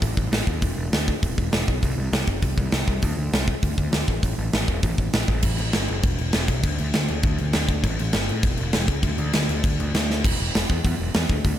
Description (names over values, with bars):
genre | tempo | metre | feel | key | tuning
punk rock | 200 BPM | 4/4 | straight | unclear | A4 = 441 Hz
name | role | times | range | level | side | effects
fuzz picked electric bass | bass | 0.0-11.5 s | E1 to A2 | -25 LUFS | equal | overdrive
big rock drum kit | drums | 0.0-11.5 s | crash cymbal, hi-hat, kick drum, snare drum | -22 LUFS | equal | none
room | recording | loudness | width
little or no reverb | none | -20 LUFS | side -11 dB against mid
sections
0.0-5.4 A section; 5.4-10.2 B section; 10.2-11.6 C section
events
drum fill 10.1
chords
none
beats
0.02 0.32 | 0.62 0.93 1.23 1.53 | 1.83 2.13 2.44 2.74 | 3.04 3.34 3.64 3.94 | 4.24 4.54 4.84 5.14 | 5.44 5.74 6.04 6.34 | 6.64 6.94 7.24 7.54 | 7.84 8.14 8.44 8.74 | 9.04 9.34 9.64 9.94 | 10.24 10.54 10.85 11.14 | 11.45